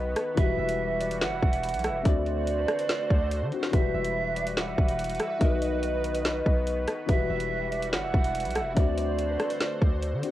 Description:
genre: hip hop, drill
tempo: 143 BPM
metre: 4/4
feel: half-time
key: E minor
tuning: A4 = 440 Hz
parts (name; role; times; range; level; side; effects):
- concert harp; melody; 0.0-10.3 s; B4 to F#5; -33 LUFS; left 1 dB; cassette tape
- dark grand piano; accompaniment; 0.0-10.3 s; D3 to F#4; -34 LUFS; left 7 dB; cassette tape
- sweeping resonant pad; sustained chords; 0.0-10.3 s; D3 to C5; -38 LUFS; equal; chorus, cassette tape
- hard-hitting 808-style bass; bass; 0.0-10.2 s; E1 to D3; -32 LUFS; equal; none
- drill drum kit; drums; 0.2-10.3 s; hi-hat, kick drum, rim click, snare drum; -26 LUFS; equal; none
- reedy pan flute; second line; 0.4-10.3 s; B4 to F#5; -32 LUFS; right 6 dB; cassette tape, analog delay
room: small room ambience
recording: home recording on cassette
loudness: -24 LUFS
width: side -14 dB against mid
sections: 0.0-10.3 A section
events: none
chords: 0.4 Emadd9; 2.1 D7; 3.7 Emadd9; 5.4 B; 7.1 Emadd9; 8.8 D7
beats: | 0.38 0.80 1.21 1.63 | 2.05 2.47 2.89 3.31 | 3.73 4.15 4.57 4.99 | 5.41 5.83 6.25 6.67 | 7.09 7.51 7.93 8.35 | 8.77 9.19 9.61 10.03

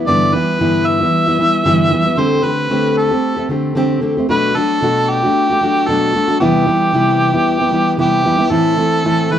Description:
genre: pop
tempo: 114 BPM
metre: 4/4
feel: swing 55% on 16ths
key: G major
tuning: A4 = 439 Hz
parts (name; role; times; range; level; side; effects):
- fingerpicked plugged-in steel-string acoustic guitar; accompaniment; 0.0-9.4 s; G2 to G4; -14 LUFS; left 1 dB; none
- mellow harmonica; melody; 0.1-9.4 s; G4 to E5; -16 LUFS; right 1 dB; plate reverb
room: moderate studio reverb, RT60 0.6 s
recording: dark, warm production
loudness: -12 LUFS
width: side -10 dB against mid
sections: 0.0-8.5 A section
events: none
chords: 0.1 G6; 2.2 D7sus4; 4.3 Bm7; 6.4 Cmaj7; 8.5 Am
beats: | 0.06 0.59 1.12 1.65 | 2.18 2.71 3.23 3.76 | 4.29 4.82 5.34 5.87 | 6.40 6.93 7.46 7.98 | 8.51 9.04

